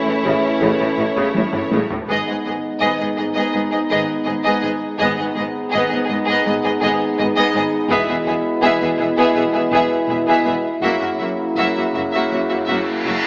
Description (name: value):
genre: cinematic, epic orchestral film score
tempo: 82 BPM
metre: 4/4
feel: straight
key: G# minor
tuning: A4 = 440 Hz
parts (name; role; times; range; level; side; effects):
- warm symphonic violin section; melody; 0.0-13.3 s; C#5 to E5; -26 LUFS; equal; none
- warm symphonic violin section; second line; 0.0-13.1 s; E4 to G#4; -26 LUFS; equal; none
- warm French horn section; sustained chords; 0.0-13.3 s; A3 to E4; -25 LUFS; equal; none
- warm trombone section; sustained chords; 0.0-13.3 s; G#2 to G#3; -27 LUFS; equal; none
- rich studio viola section; accompaniment; 0.1-13.2 s; C#3 to B3; -27 LUFS; equal; none
- rich symphonic cello section; bass; 0.1-13.1 s; E2 to A2; -30 LUFS; equal; none
- warm symphonic double bass section; bass; 0.2-13.1 s; E1 to A1; -35 LUFS; equal; none
- warm tuba; bass; 0.2-1.8 s; A1; -28 LUFS; equal; none
- taiko ensemble; drums; 0.6-9.3 s; none; -30 LUFS; equal; none
- reverse cymbal; sound effects; 12.6-13.3 s; none; -27 LUFS; equal; none
room: wet scoring stage reverb, RT60 2.0 s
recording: AM radio sound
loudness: -19 LUFS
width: mono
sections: 0.0-2.1 A section; 2.1-13.3 B section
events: drum fill 1.3-2.1; reverse cymbal 12.6-13.3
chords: 0.0 A; 2.1 G#m; 7.9 E; 10.8 F#7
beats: 0.61 1.35 | 2.09 2.82 3.55 4.28 | 5.00 5.74 6.46 7.19 | 7.91 8.63 9.36 10.10 | 10.84 11.58 12.33 13.07